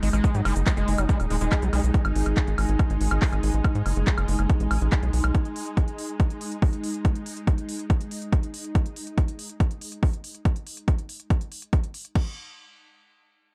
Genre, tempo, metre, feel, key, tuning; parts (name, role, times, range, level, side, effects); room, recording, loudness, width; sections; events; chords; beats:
psychedelic trance; 141 BPM; 4/4; straight; A4 = 440 Hz
swarming drone; sustained chords; 0.0-8.8 s; G#3 to D#4; -36 LUFS; equal; built-in reverb, sidechain pumping
screaming distorted acid line; riff; 0.0-1.8 s; F#3 to G#3; -32 LUFS; equal; distortion, chorus, sidechain pumping, digital delay
tight sequencer bass; bass; 0.0-5.3 s; D#1 to G#2; -26 LUFS; equal
techno drum kit; drums; 0.0-12.2 s; crash cymbal, handclaps, hi-hat, woodblock; -36 LUFS; equal
warbly tape-like pad; texture; 0.0-8.8 s; D#4 to G#5; -40 LUFS; equal; chorus, built-in reverb, sidechain pumping
cabasa; percussion; 0.1-1.9 s; -46 LUFS; equal
electronic kick drum; drums; 0.2-12.2 s; -24 LUFS; equal
little or no reverb; dark, warm production; -25 LUFS; mono
0.0-12.2 A section; 12.2-13.5 B section
fade-out on ambient pad 0.0-8.8
0.0 G#5; 12.2 N.C.
| 0.24 0.67 1.09 1.52 | 1.94 2.37 2.79 3.22 | 3.64 4.07 4.50 4.92 | 5.35 5.77 6.20 6.62 | 7.05 7.47 7.90 8.32 | 8.75 9.18 9.60 10.03 | 10.45 10.88 11.30 11.73 | 12.15